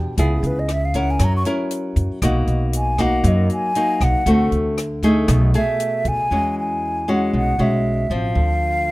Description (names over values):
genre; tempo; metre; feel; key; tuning
bossa nova; 117 BPM; 4/4; straight; unclear; A4 = 441 Hz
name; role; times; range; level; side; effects
nylon-string guitar; accompaniment; 0.0-8.9 s; B2 to Bb4; -21 LUFS; left 1 dB; none
upright bass; bass; 0.0-8.9 s; A1 to F#2; -20 LUFS; equal; none
compact cocktail drum kit; drums; 0.2-6.2 s; hi-hat, kick drum, rim click; -27 LUFS; equal; none
mellow hollow silver concert flute; melody; 0.3-8.9 s; G#4 to C#6; -22 LUFS; equal; none
room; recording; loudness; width
small room ambience; rough home demo mix; -16 LUFS; side -19 dB against mid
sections
0.0-6.3 A section; 6.3-8.9 B section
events
flute solo 0.0-6.3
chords
0.2 C#m7; 1.2 F#7; 2.2 Bmaj7; 4.3 D7; 5.3 B6; 6.3 E69; 8.4 Dm7